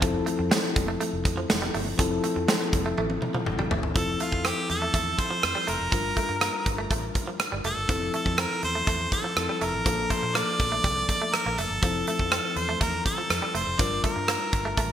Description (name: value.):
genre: 1980s-style pop.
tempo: 122 BPM.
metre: 4/4.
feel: straight.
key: F major.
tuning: A4 = 440 Hz.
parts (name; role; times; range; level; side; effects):
mellow tine electric piano; accompaniment; 0.0-14.9 s; F3 to Bb4; -31 LUFS; left 4 dB; none.
direct-recorded clean electric guitar; riff; 0.0-14.9 s; F3 to C4; -34 LUFS; right 4 dB; lush chorus, digital delay.
vintage muted fingered electric bass; bass; 0.0-14.9 s; F1 to Bb2; -34 LUFS; equal; none.
big rock drum kit; drums; 0.0-14.9 s; hi-hat, kick drum, rim click, snare drum, toms; -27 LUFS; right 1 dB; gated reverb.
clear harmonica; melody; 4.0-14.9 s; F4 to D5; -28 LUFS; right 1 dB; digital delay.
room: moderate plate reverb, RT60 1.8 s, small room reverb.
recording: bright 1980s-style digital production.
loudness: -23 LUFS.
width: side -10 dB against mid.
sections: 0.0-4.0 A section; 4.0-14.9 B section.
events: drum fill 3.0-4.0.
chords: 0.0 Fmaj7; 5.9 Gm7; 7.9 Fmaj7; 9.9 Bbmaj7; 11.8 Fmaj7; 13.8 Gm7.